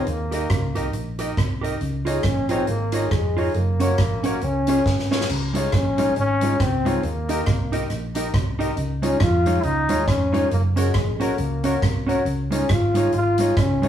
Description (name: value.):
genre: ska.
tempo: 138 BPM.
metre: 4/4.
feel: swing 59% on 8ths.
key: Db major.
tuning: A4 = 436 Hz.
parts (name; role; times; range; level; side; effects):
breathy trombone; melody; 0.0-13.9 s; Ab3 to F4; -24 LUFS; left 2 dB; none.
clear upright piano; stabs; 0.0-13.9 s; Db4 to Eb5; -27 LUFS; left 2 dB; none.
hollow-body short-scale fingered electric bass; bass; 0.1-13.9 s; F1 to F2; -25 LUFS; equal; none.
street-band drum kit; drums; 0.1-13.9 s; crash cymbal, hi-hat, kick drum, rim click, snare drum; -25 LUFS; right 1 dB; none.
mellow electric guitar; accompaniment; 0.3-13.9 s; Ab3 to Eb5; -28 LUFS; right 4 dB; none.
room: moderate studio reverb, RT60 0.9 s.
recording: band playing live in one room, studio ambience.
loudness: -19 LUFS.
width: side -10 dB against mid.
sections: 0.0-5.3 A section; 5.3-13.9 A section.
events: drum fill 4.9-5.3.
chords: 0.1 Eb; 1.8 Dbadd9; 3.5 Gb; 4.4 Db; 5.3 Dbadd9; 7.0 Eb; 8.8 Dbadd9; 10.5 Gb; 12.3 Dbadd9.